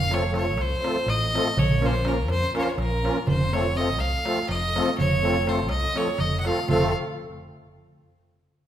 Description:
balkan folk, Balkan wedding band; 246 BPM (eighths); 7/8; straight; A4 = 440 Hz
bright fiddle; melody; 0.0-6.9 s; Bb4 to Gb5; -26 LUFS; right 1 dB
hollow-body short-scale fingered electric bass; bass; 0.0-6.9 s; F1 to F2; -27 LUFS; equal
musette accordion; accompaniment; 0.1-6.9 s; F3 to Bb4; -27 LUFS; left 1 dB
darbuka; percussion; 0.1-6.9 s; -30 LUFS; right 2 dB
wet recital hall reverb, RT60 1.8 s; minimal, uncompressed stereo recording; -21 LUFS; side -10 dB against mid
0.0-6.7 A section; 6.7-8.4 B section
0.0 F; 1.6 Bbm; 3.3 F

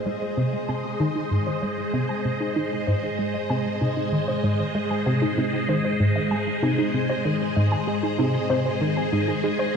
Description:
ambient, sequencer-driven space music; 96 BPM; 4/4; straight; A4 = 440 Hz
phased string machine; sustained chords; 0.0-9.8 s; Ab3 to Eb5; -26 LUFS; equal; ensemble chorus, phaser, shimmer reverb
analog drone; bass; 2.6-9.7 s; Ab2; -40 LUFS; equal
warbly dusty pluck; arpeggios; 0.1-9.7 s; Eb4 to Ab5; -29 LUFS; equal; chorus, auto-pan, analog delay, shimmer reverb
plucky analog bass; riff; 0.1-9.6 s; Ab2 to Ab3; -25 LUFS; equal; analog delay
wet concert hall reverb, RT60 2.2 s; dark, warm production, nothing above 10.6 kHz; -22 LUFS; side -6 dB against mid
0.0-9.8 A section
filter sweep on analog synth bass 0.0-9.8
0.0 Ab

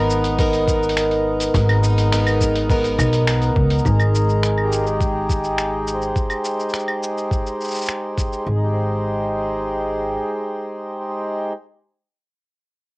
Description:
folktronica; 104 BPM; 4/4; straight; A4 = 440 Hz
pedal harmonium; sustained chords; 0.0-11.5 s; Ab3 to C5; -22 LUFS; equal; cassette tape
picked plugged-in twelve-string acoustic guitar; arpeggios; 0.0-4.4 s; Ab2 to A#4; -21 LUFS; equal; vintage 12-bit sampler grit, cassette tape, tape echo
upright bass; bass; 0.0-10.2 s; Ab1 to Db2; -20 LUFS; equal
lo-fi sampler-style drum kit; drums; 0.1-8.4 s; claves, finger snaps, hi-hat, shaker; -26 LUFS; equal; small room ambience
electronic kick drum; drums; 0.4-8.3 s; -21 LUFS; equal; small room ambience
light reverb; home recording on cassette; -17 LUFS; side -24 dB against mid
0.0-3.8 A section; 3.8-8.5 B section; 8.5-10.8 C section
band accent 3.3
0.0 Bmaj7/Ab; 3.8 Abmaj7

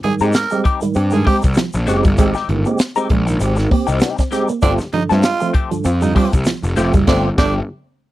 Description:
funk; 98 BPM; 4/4; swing 56% on 16ths; A4 = 439 Hz
growling tenor saxophone; second line; 0.0-7.5 s; D4 to Bb4; -20 LUFS; right 5 dB
clean electric guitar; accompaniment; 0.0-7.6 s; F3 to Bb4; -22 LUFS; left 6 dB; wah, vibrato effect
electric guitar with an envelope filter; riff; 0.0-7.0 s; F3 to C4; -20 LUFS; right 4 dB; lush chorus
tonewheel organ; stabs; 0.0-7.6 s; G2 to G4; -20 LUFS; right 2 dB; overdrive, fast rotary speaker
fuzz picked electric bass; bass; 0.0-7.6 s; F1 to Ab2; -18 LUFS; equal; overdrive
crisp fusion drum kit; drums; 0.0-7.6 s; crash cymbal, hi-hat, kick drum, snare drum; -16 LUFS; equal
tube shaker; percussion; 0.2-7.1 s; -37 LUFS; left 3 dB
little or no reverb; dry, close 1970s-style studio recording; -14 LUFS; side -15 dB against mid
0.0-8.1 A section
band accent 7.1-8.1
0.0 Abmaj7; 4.6 G9sus4

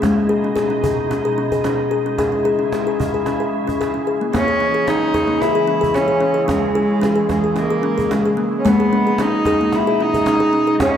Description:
world meditative, meditative tuned percussion; 111 BPM; 4/4; swing 53% on 16ths; C# minor; A4 = 440 Hz
soft additive organ-like pad; sustained chords; 0.0-11.0 s; B2 to E4; -24 LUFS; right 2 dB; ensemble chorus, built-in reverb
kalimba; arpeggios; 0.0-11.0 s; G#3 to G#4; -18 LUFS; left 2 dB; tape echo
cajon; percussion; 0.0-11.0 s; -27 LUFS; right 2 dB
warm cello; melody; 4.3-11.0 s; G#3 to E4; -18 LUFS; equal; tape echo
wet lush hall reverb, RT60 2.9 s; -15 LUFS; side -9 dB against mid
0.0-4.3 A section; 4.3-11.0 B section
0.0 G#m; 2.2 C#m; 8.6 G#m

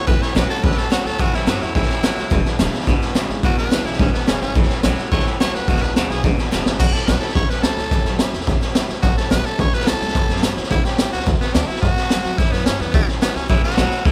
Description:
rockabilly; 214 BPM; 4/4; straight; A mixolydian; A4 = 437 Hz
breathy tenor saxophone; melody; 0.0-14.1 s; A3 to C#5; -27 LUFS; equal
picked swing-style acoustic guitar; accompaniment; 0.0-14.1 s; E2 to F#4; -32 LUFS; equal
twangy electric guitar; riff; 0.0-6.8, 13.5-14.1 s; E2 to F#3; -28 LUFS; equal
upright bass; bass; 0.0-14.1 s; E1 to G2; -26 LUFS; equal
raw garage drum kit; drums; 0.1-14.1 s; crash cymbal, hi-hat, kick drum, snare drum; -21 LUFS; equal
little or no reverb; -19 LUFS; mono
0.0-6.8 A section; 6.8-14.1 B section
drum fill 6.5; tenor saxophone solo 6.8-14.1
0.0 A7; 2.3 E7; 4.6 A7; 5.7 E7; 6.8 A7; 11.3 D7; 12.4 A7

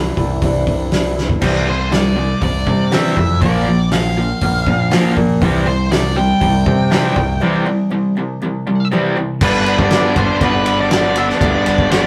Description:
quiet-loud alternative rock; 120 BPM; 4/4; straight; A4 = 439 Hz
fingerpicked steel-string acoustic guitar; arpeggios; 0.0-9.4 s; Bb2 to E4; -23 LUFS; equal
growling picked electric bass; bass; 0.0-12.1 s; G1 to C3; -23 LUFS; equal; overdrive
loose indie drum kit; drums; 0.2-12.0 s; crash cymbal, hi-hat, kick drum, ride cymbal, snare drum; -21 LUFS; equal
raw garage guitar; riff; 1.4-12.1 s; G2 to D4; -20 LUFS; equal; overdrive
octave-fuzz lead guitar; melody; 1.7-12.1 s; B4 to G5; -23 LUFS; equal; distortion
moderate studio reverb, RT60 0.6 s; rough rehearsal-room recording, tube saturation; -15 LUFS; mono
0.0-1.4 A section; 1.4-9.4 B section; 9.4-12.1 C section
drum fill 1.2; break 7.4-9.4
0.0 Cadd9; 3.4 Bb; 5.4 C; 9.4 G

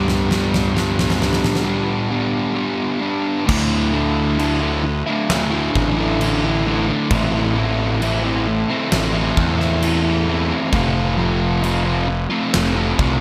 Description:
post-rock; 66 BPM; 4/4; straight; A4 = 439 Hz
fuzz guitar; riff; 0.0-13.2 s; A2 to G4; -22 LUFS; equal; distortion
fuzz picked electric bass; bass; 0.0-13.2 s; F1 to G2; -23 LUFS; equal; overdrive
huge arena drum kit; drums; 0.1-13.2 s; crash cymbal, kick drum, snare drum, toms; -26 LUFS; equal
moderate plate reverb, RT60 3.4 s; dreamy mix soaked in reverb; -19 LUFS; mono
0.0-3.5 A section; 3.5-13.2 B section
build-up 0.0-3.5; drum fill 0.0-1.7
0.0 G; 3.5 Dsus2; 7.1 Am; 10.7 F

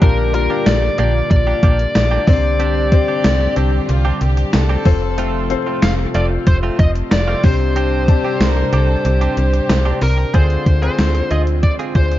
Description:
1980s-style pop; 93 BPM; 4/4; straight; A4 = 440 Hz
bluesy overdriven lead guitar; melody; 0.0-12.2 s; Bb4 to F5; -22 LUFS; equal; distortion, shimmer reverb
clear grand piano; accompaniment; 0.0-12.2 s; Bb2 to A5; -23 LUFS; left 9 dB; shimmer reverb
chorused pulse-width pad; sustained chords; 0.0-12.2 s; C3 to G4; -25 LUFS; right 1 dB; phaser, shimmer reverb
direct-recorded clean electric guitar; riff; 0.0-12.2 s; A3 to Ab4; -27 LUFS; right 4 dB; analog chorus, tape echo, shimmer reverb
slap-like FM bass; bass; 0.0-12.2 s; F1 to D2; -17 LUFS; equal
gated 80s digital drum machine; drums; 0.0-12.2 s; hi-hat, kick drum, snare drum, tambourine; -15 LUFS; equal; gated reverb, gated reverb snare, overdrive
clear studio violin section; second line; 2.9-10.3 s; F4 to Bb4; -31 LUFS; equal; tape echo, shimmer reverb
light reverb; dark, warm production, vinyl crackle, nothing above 7.5 kHz; -13 LUFS; side -14 dB against mid
0.0-10.3 A section; 10.3-12.2 B section
0.0 Bb6; 2.3 Csus2; 4.9 F; 7.4 Csus2; 10.3 Dm7b5

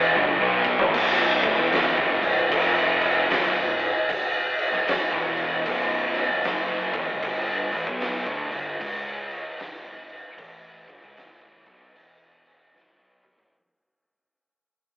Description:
stoner and doom metal; 76 BPM; 4/4; swing 63% on 8ths; B minor; A4 = 440 Hz
fuzz guitar; riff; 0.0-13.5 s; B1 to C#4; -28 LUFS; equal; distortion
thick fuzz guitar; riff; 0.0-13.5 s; B1 to C#4; -32 LUFS; left 1 dB
thick fuzz guitar; riff; 0.0-13.5 s; B1 to C#4; -34 LUFS; right 1 dB
fuzz picked electric bass; bass; 0.0-13.5 s; B0 to D2; -32 LUFS; equal; overdrive
oversized low-tuned drum kit; drums; 0.2-13.5 s; crash cymbal, kick drum, snare drum, toms; -23 LUFS; equal
light reverb; rough rehearsal-room recording, telephone sound; -20 LUFS; side -24 dB against mid
0.9-13.5 A section
drum fill 0.2-0.9, 12.7-13.5; fade-out 0.9-13.5
0.2 G5; 0.9 Bm; 2.5 F5; 3.3 B5; 7.2 G5; 8.8 C#5; 9.6 G5; 12.0 E5; 12.7 G5

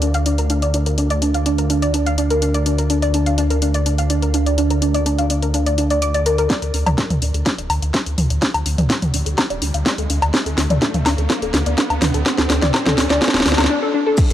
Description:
melodic techno; 125 BPM; 4/4; straight; D minor; A4 = 437 Hz
soft round pluck; arpeggios; 0.0-14.3 s; D4 to D6; -21 LUFS; equal; analog chorus, sidechain pumping, analog delay
swelling detuned saw bass; bass; 0.0-14.3 s; D1 to D2; -19 LUFS; equal; sidechain pumping
house drum kit; drums; 0.0-14.3 s; crash cymbal, hi-hat, snare drum, toms, woodblock; -20 LUFS; equal; overdrive, sidechain pumping on hats, studio reverb, sidechain pumping on toms, sidechain pumping on perc, sidechain pumping on cymbals
electronic kick drum; drums; 6.5-14.3 s; -20 LUFS; equal; overdrive, high-pass filter on kick, studio reverb
riser and impact; sound effects; 8.1-14.3 s; -28 LUFS; right 2 dB
maracas; percussion; 14.2-14.3 s; -30 LUFS; left 3 dB
light reverb, digital ambience; dry, gritty hardware recording, transformer saturation, cassette tape; -15 LUFS; side -12 dB against mid
0.0-6.5 A section; 6.5-14.2 B section
build-up 6.5-14.2; drum fill 6.5-13.7; filter sweep on synth arpeggio sound 6.5-14.2; riser 8.1-13.7; break 13.7-14.2; impact 14.2
0.0 Bb/D; 6.5 D5

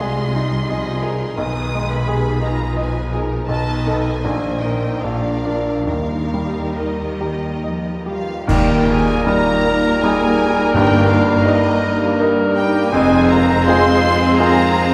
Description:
classical, romantic movement for piano and orchestra; 66-88 BPM; 3/4; rubato; Eb major; A4 = 440 Hz
clear grand piano; melody; 0.0-14.9 s; F1 to Eb5; -22 LUFS; equal
rich studio violin section; melody; 0.0-14.9 s; Eb5 to Eb6; -30 LUFS; equal
warm studio violin section; second line; 0.0-14.9 s; G3 to Eb5; -29 LUFS; equal
dark studio viola section; accompaniment; 0.0-14.9 s; Eb3 to G4; -26 LUFS; equal
warm studio cello section; bass; 0.0-13.5 s; F2 to G3; -30 LUFS; equal
warm studio double bass section; bass; 0.0-13.5 s; F1 to Eb2; -27 LUFS; equal
cymbal swell, clash cymbals and concert bass drum; percussion; 5.9-10.0 s; -27 LUFS; equal
mellow clarinet; second line; 8.1-14.9 s; Eb4 to C5; -29 LUFS; equal
small flute group; second line; 8.1-14.9 s; Eb5 to C6; -27 LUFS; equal
clear oboe; second line; 8.5-14.9 s; Bb4 to C5; -27 LUFS; equal
mellow bassoon; accompaniment; 8.5-14.8 s; G3 to Ab3; -25 LUFS; equal
dark French horn section; sustained chords; 8.5-14.9 s; Bb3 to F4; -27 LUFS; equal
warm trombone section; sustained chords; 8.5-14.9 s; G2 to G3; -28 LUFS; equal
timpani; percussion; 10.7-11.8 s; G2; -28 LUFS; equal
wet scoring stage reverb, RT60 2.0 s; heard from further back in the room; -17 LUFS; mono
0.0-8.5 A section; 8.5-14.9 B section
band accent 8.5-9.3
0.0 Ab/C; 1.4 Abm/Cb; 3.5 B7; 4.2 Eb/Bb; 5.0 Bb; 5.9 Eb; 10.7 Eb/G; 12.9 Fm

